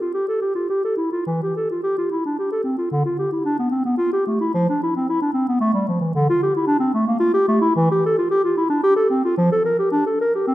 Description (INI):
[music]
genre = classical, baroque-style fantasia for unaccompanied clarinet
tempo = 111 BPM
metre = 3/4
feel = uneven beats, rubato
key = unclear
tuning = A4 = 439 Hz
[part]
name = dark clarinet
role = solo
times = 0.0-10.5 s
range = D3 to Bb4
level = -17 LUFS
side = equal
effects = none
[sound]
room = wet recital hall reverb, RT60 1.6 s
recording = minimal, uncompressed stereo recording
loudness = -17 LUFS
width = side -15 dB against mid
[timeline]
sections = 0.0-10.5 A section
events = none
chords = none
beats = 0.15 0.70 | 1.27 1.84 2.39 | 2.92 3.46 3.99 | 4.55 5.09 5.62 | 6.15 6.67 7.20 | 7.76 8.30 8.84 | 9.38 9.92 10.48